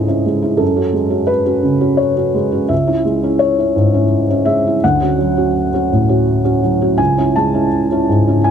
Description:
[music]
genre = neoclassical minimalist piano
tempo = 85 BPM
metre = 3/4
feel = rubato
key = A major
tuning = A4 = 440 Hz
[part]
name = felt-muted upright piano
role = solo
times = 0.0-8.5 s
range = C#2 to A5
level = -12 LUFS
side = equal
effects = none
[sound]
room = light reverb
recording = close, detailed microphones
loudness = -12 LUFS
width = side -8 dB against mid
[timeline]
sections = 0.0-8.5 A section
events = none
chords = 0.0 Amaj7/C#; 0.6 F#madd9; 2.7 C#m; 4.8 Dmaj7; 7.0 Amaj7/C#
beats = | 0.61 1.30 2.00 | 2.71 3.41 4.11 | 4.82 5.54 6.26 | 6.99 7.73 8.45

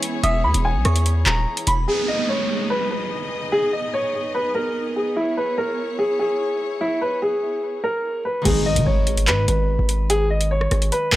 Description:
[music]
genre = hip hop, drill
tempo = 146 BPM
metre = 4/4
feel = half-time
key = G# minor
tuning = A4 = 438 Hz
[part]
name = dark grand piano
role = melody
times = 0.0-11.2 s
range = E4 to B5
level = -22 LUFS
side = equal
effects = analog delay
[part]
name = Celtic harp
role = accompaniment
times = 0.0-1.9, 8.4-11.2 s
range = D#3 to D#4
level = -29 LUFS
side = equal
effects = none
[part]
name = warm studio string section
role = sustained chords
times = 0.0-8.4 s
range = B3 to D#5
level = -30 LUFS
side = equal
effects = none
[part]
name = drill drum kit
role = drums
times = 0.0-1.8, 8.5-11.2 s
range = crash cymbal, handclaps, hi-hat, rim click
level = -22 LUFS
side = equal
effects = none
[part]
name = glassy synth bell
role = second line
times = 0.2-1.9 s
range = B5 to D#6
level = -30 LUFS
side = right 3 dB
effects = chorus, analog delay
[part]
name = distorted 808-style bass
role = bass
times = 0.2-1.9, 8.5-11.2 s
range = D#1 to D#3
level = -20 LUFS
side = equal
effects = distortion
[part]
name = downlifter and impact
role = sound effects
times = 1.9-5.2, 8.5-10.1 s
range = none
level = -27 LUFS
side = right 1 dB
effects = none
[sound]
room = studio reverb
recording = dry, gritty hardware recording, transformer saturation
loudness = -19 LUFS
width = side -15 dB against mid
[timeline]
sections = 0.0-1.9 A section; 1.9-8.5 B section; 8.5-11.2 C section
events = impact 8.5-10.1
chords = 0.0 E6; 1.9 G#m; 5.2 E6; 8.5 G#m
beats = | 0.23 0.65 1.06 1.47 | 1.88 2.29 2.70 3.11 | 3.52 3.93 4.34 4.76 | 5.17 5.58 5.99 6.40 | 6.81 7.22 7.63 8.04 | 8.45 8.87 9.28 9.69 | 10.10 10.51 10.92

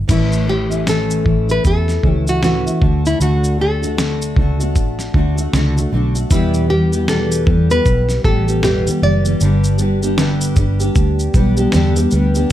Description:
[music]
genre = acoustic pop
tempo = 77 BPM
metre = 4/4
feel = swing 60% on 16ths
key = unclear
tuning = A4 = 437 Hz
[part]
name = fingerpicked steel-string acoustic guitar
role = accompaniment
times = 0.0-12.5 s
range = E2 to G4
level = -18 LUFS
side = equal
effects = double-tracked left and right
[part]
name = vintage muted fingered electric bass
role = bass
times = 0.0-12.4 s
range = F#1 to E2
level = -18 LUFS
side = equal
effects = none
[part]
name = nylon-string guitar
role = melody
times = 0.1-11.7 s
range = E4 to D5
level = -20 LUFS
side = left 1 dB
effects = none
[part]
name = dusty soul sampler-style drum kit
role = drums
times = 0.1-12.5 s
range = crash cymbal, kick drum, shaker, snare drum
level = -18 LUFS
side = equal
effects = none
[sound]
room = light reverb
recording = none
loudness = -13 LUFS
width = side -12 dB against mid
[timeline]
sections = 0.1-12.5 A section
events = none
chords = 0.1 A; 2.8 D; 6.3 Em; 9.4 G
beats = | 0.10 0.87 1.65 2.43 | 3.20 3.98 4.76 5.53 | 6.31 7.08 7.86 8.63 | 9.41 10.18 10.96 11.73 | 12.50

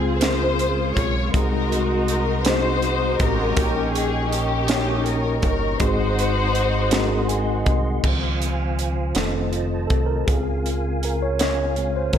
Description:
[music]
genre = slow gospel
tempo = 54 BPM (dotted quarters)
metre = 6/8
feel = straight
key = Db major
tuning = A4 = 438 Hz
[part]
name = warm studio string section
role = melody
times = 0.0-7.7 s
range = C4 to Db5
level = -23 LUFS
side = left 2 dB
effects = none
[part]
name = mellow tine electric piano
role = accompaniment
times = 0.0-12.2 s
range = Ab2 to Ab5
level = -25 LUFS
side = left 2 dB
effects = medium stereo tremolo
[part]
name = mellow tonewheel organ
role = sustained chords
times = 0.0-12.2 s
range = Ab3 to Db6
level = -30 LUFS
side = right 3 dB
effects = fast rotary speaker, chorus vibrato
[part]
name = deep dub fingered electric bass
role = bass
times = 0.0-12.2 s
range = F1 to D2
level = -25 LUFS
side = equal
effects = none
[part]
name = crisp fusion drum kit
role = drums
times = 0.2-12.2 s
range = crash cymbal, hi-hat, kick drum, snare drum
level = -24 LUFS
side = right 1 dB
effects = none
[sound]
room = light reverb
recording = none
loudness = -19 LUFS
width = side -9 dB against mid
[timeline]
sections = 0.0-8.0 A section; 8.0-12.2 B section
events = tine electric piano fill 6.9-8.0; tine electric piano solo 8.0-12.2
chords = 0.0 Dbmaj7; 1.3 Ab7/C; 3.6 Eb7/Bb; 5.8 Ab7; 8.0 Dbmaj7; 9.2 F7; 10.3 Bbm7/Db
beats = 0.22 | 1.34 2.46 | 3.57 4.69 | 5.81 6.93 | 8.04 9.16 | 10.28 11.39

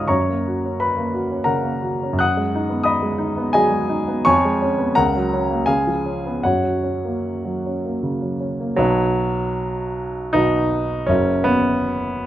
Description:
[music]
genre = classical, romantic character piece for solo piano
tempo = 71-93 BPM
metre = 3/4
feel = rubato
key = F# major, B major from 8.8 s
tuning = A4 = 441 Hz
[part]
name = warm grand piano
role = solo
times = 0.0-12.3 s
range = F#1 to F#6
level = -18 LUFS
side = equal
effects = none
[sound]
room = light reverb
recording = close, detailed microphones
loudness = -18 LUFS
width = side -13 dB against mid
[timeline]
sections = 0.0-8.8 A section; 8.8-12.3 B section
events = none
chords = 0.1 F#; 2.2 G#m7/F#; 4.3 C#7/E#; 5.0 F#/C#; 5.7 C#7; 6.4 F#; 8.8 B; 11.1 F#7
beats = | 0.10 0.81 1.48 | 2.21 2.87 3.54 | 4.27 4.96 5.66 | 6.42 7.23 8.01 | 8.77 9.53 10.34 | 11.08 11.81

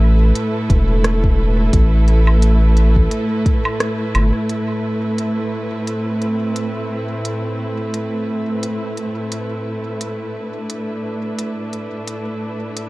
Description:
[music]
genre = ambient dub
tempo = 87 BPM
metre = 4/4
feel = swing 56% on 16ths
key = A minor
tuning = A4 = 440 Hz
[part]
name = warm studio string section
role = sustained chords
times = 0.0-12.9 s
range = A2 to B4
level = -21 LUFS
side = right 1 dB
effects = vintage 12-bit sampler grit
[part]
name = round analog bass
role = bass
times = 0.0-4.3 s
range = E1 to A1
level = -13 LUFS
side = equal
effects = none
[part]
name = organic electronic drum kit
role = drums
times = 0.4-12.9 s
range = hi-hat, rim click, woodblock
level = -25 LUFS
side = right 1 dB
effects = dub echo
[part]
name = electronic kick drum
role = drums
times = 0.7-3.6 s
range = none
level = -16 LUFS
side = equal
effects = none
[sound]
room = digital ambience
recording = dark, warm production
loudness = -16 LUFS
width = side -21 dB against mid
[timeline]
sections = 0.0-4.5 A section; 4.5-12.9 B section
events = band accent 3.8-4.1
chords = 0.0 E5; 4.5 Amadd9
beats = 0.35 1.04 | 1.73 2.42 3.11 3.80 | 4.49 5.18 5.87 6.56 | 7.25 7.94 8.63 9.32 | 10.01 10.70 11.39 12.08 | 12.77

